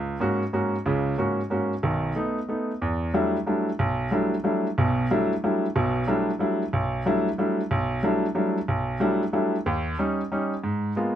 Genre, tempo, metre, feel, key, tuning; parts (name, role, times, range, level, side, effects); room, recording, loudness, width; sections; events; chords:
jazz; 184 BPM; 3/4; swing 64% on 8ths; E dorian; A4 = 440 Hz
clear baby grand piano; solo; 0.0-11.2 s; B1 to F#4; -23 LUFS; equal
moderate club reverb, RT60 0.6 s; close, detailed microphones; -23 LUFS; side -10 dB against mid
0.0-2.8 A section; 2.8-10.6 B section
0.0 F#; 1.8 B7; 2.8 Em11; 9.7 D#7; 10.6 G#m69